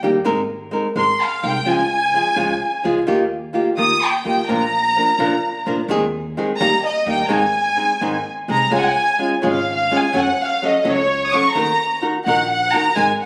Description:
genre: mexican folk, mariachi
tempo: 85 BPM (dotted quarters)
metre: 6/8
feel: straight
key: Ab major, Db major from 8.7 s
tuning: A4 = 438 Hz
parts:
  - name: flamenco guitar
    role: accompaniment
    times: 0.0-13.1 s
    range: Ab2 to Bb4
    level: -22 LUFS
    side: equal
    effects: none
  - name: upright bass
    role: bass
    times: 0.0-13.1 s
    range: Ab1 to Gb2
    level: -33 LUFS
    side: equal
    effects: none
  - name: dark chamber violin section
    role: melody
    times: 1.0-13.3 s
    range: Db5 to Eb6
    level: -20 LUFS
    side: equal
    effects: none
room: wet recital hall reverb, RT60 1.8 s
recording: recorded on a phone in the room, studio ambience, compression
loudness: -18 LUFS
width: mono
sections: 0.0-8.7 A section; 8.7-13.3 B section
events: none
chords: 0.3 Abadd9; 1.7 Db; 3.1 Ebadd9; 4.5 Bb; 5.9 Ab/Eb; 6.6 Eb; 7.3 Ab; 8.7 Db; 10.1 Gbm; 11.5 Ebm

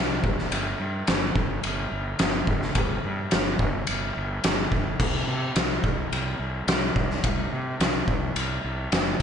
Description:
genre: quiet-loud alternative rock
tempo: 107 BPM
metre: 4/4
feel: straight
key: unclear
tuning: A4 = 436 Hz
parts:
  - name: fuzz fingered electric bass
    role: bass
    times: 0.0-9.1 s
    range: F#1 to C3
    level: -30 LUFS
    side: equal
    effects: overdrive
  - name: oversized low-tuned drum kit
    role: drums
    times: 0.2-9.2 s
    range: crash cymbal, kick drum, ride cymbal, snare drum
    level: -24 LUFS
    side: equal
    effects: none
room: light reverb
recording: nothing above 10.4 kHz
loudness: -23 LUFS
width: side -8 dB against mid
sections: 0.0-9.2 A section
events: none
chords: none

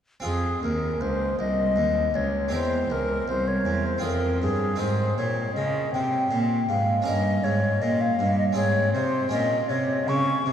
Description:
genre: classical, baroque-style sonata movement with continuo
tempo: 79 BPM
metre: 3/4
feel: straight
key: F minor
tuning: A4 = 440 Hz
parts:
  - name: bright baroque flute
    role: melody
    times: 0.2-10.5 s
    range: Ab4 to Db6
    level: -25 LUFS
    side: left 2 dB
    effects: none
  - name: harpsichord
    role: accompaniment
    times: 0.2-10.5 s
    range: C2 to Bb4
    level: -30 LUFS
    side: right 1 dB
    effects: none
  - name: rich cello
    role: bass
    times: 0.2-10.5 s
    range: C2 to Db3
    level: -26 LUFS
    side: right 1 dB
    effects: none
room: wet cathedral reverb, RT60 4.8 s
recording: dark, warm production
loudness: -22 LUFS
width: side -9 dB against mid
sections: 0.2-10.5 A section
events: none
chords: 0.2 Fm; 2.5 C7; 4.0 Fm; 4.8 Ab; 7.1 Eb7/G; 8.6 Ab; 9.3 Gdim/Bb

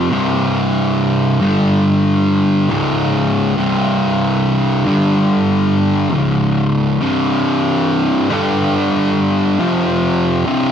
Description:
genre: metal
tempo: 70 BPM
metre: 4/4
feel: straight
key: unclear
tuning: A4 = 440 Hz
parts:
  - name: fuzz guitar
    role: solo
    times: 0.0-10.7 s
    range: C2 to G3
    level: -13 LUFS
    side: equal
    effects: distortion
room: moderate large studio reverb, RT60 1.0 s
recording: dark, warm production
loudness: -13 LUFS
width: side -8 dB against mid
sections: 0.0-7.0 A section; 7.0-10.7 B section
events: none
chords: 0.1 C5; 1.4 G5; 2.7 Db5; 3.6 C5; 4.9 G5; 6.2 Db5; 7.0 C5; 8.3 G5; 9.6 F5

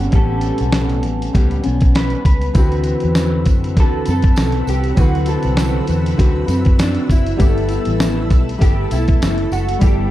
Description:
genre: indie pop, bedroom pop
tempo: 99 BPM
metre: 4/4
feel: swing 55% on 16ths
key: unclear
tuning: A4 = 439 Hz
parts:
  - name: fingerpicked steel-string acoustic guitar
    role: accompaniment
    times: 0.0-10.1 s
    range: A2 to B4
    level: -22 LUFS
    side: left 2 dB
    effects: wide subtle chorus, vibrato effect
  - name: warbly lo-fi synth keys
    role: accompaniment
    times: 0.0-10.1 s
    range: E3 to F#5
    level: -27 LUFS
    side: right 3 dB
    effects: chorus
  - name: vintage muted fingered electric bass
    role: bass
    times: 0.0-10.1 s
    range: F#1 to F#2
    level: -19 LUFS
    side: equal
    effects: none
  - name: dusty soul sampler-style drum kit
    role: drums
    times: 0.1-10.0 s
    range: hi-hat, kick drum, snare drum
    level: -16 LUFS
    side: equal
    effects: none
  - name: electric guitar through a small old amp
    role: melody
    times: 0.2-10.1 s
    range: D4 to B4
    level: -25 LUFS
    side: right 1 dB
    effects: analog chorus, tape echo
  - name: string machine, cellos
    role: sustained chords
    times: 2.5-10.1 s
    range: C4 to E6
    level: -29 LUFS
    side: equal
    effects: ensemble chorus
  - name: tambourine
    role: percussion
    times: 2.6-10.0 s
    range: none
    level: -40 LUFS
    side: right 7 dB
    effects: none
room: digital ambience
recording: dark, warm production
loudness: -13 LUFS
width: side -14 dB against mid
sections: 0.0-10.1 A section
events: none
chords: 0.0 A9; 2.6 D13; 7.4 G69

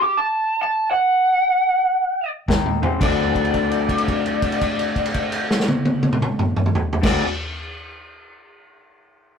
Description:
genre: electric blues shuffle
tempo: 112-138 BPM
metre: 4/4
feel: swing 64% on 8ths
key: D mixolydian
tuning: A4 = 439 Hz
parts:
  - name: lead guitar through a small cranked amp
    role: melody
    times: 0.0-7.2 s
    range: A4 to D6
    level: -20 LUFS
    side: equal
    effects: overdrive
  - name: electric guitar through a small old amp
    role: riff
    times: 2.5-7.2 s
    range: D3 to F#4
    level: -24 LUFS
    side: left 4 dB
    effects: none
  - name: vintage muted fingered electric bass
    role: bass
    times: 2.5-7.2 s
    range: D2 to Eb2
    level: -30 LUFS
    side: equal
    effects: none
  - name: vintage drum kit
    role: drums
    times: 2.5-7.2 s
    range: crash cymbal, kick drum, snare drum, toms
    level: -21 LUFS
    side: equal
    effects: none
room: moderate studio ambience, RT60 0.5 s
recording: rough rehearsal-room recording, warm saturation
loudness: -17 LUFS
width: side -7 dB against mid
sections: 0.0-3.0 A section; 3.0-7.3 B section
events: slowing down 0.0-3.0; stop 0.0-2.5; drum fill 2.5-3.0; held note 3.0-7.0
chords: 0.0 D (rootless); 2.5 Eb5; 3.0 D7

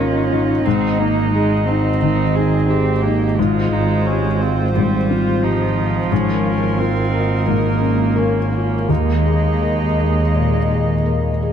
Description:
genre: neoclassical piano and strings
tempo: 87 BPM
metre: 4/4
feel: uneven beats, rubato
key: Ab major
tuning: A4 = 439 Hz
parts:
  - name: muted cello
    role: second line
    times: 0.0-11.5 s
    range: F3 to Db4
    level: -22 LUFS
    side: right 6 dB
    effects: none
  - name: felt-muted upright piano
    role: accompaniment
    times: 0.0-11.5 s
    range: Eb2 to Bb4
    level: -20 LUFS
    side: left 4 dB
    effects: none
  - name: muted viola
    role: accompaniment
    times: 0.0-11.5 s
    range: C4 to Ab4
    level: -25 LUFS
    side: right 3 dB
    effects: none
  - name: hollow soft pad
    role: sustained chords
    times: 0.0-11.5 s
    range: Bb3 to Eb5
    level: -25 LUFS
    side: equal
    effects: chorus
  - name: muted double bass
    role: bass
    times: 0.0-11.5 s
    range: Ab1 to Eb2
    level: -19 LUFS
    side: right 1 dB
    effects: none
room: light reverb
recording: close, detailed microphones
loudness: -15 LUFS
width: side -8 dB against mid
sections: 0.0-11.5 A section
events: none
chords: 0.0 Bbm/Ab; 0.7 Ab; 3.4 Fmadd9/Ab; 6.1 Bbm/Ab; 8.9 Ebsus4

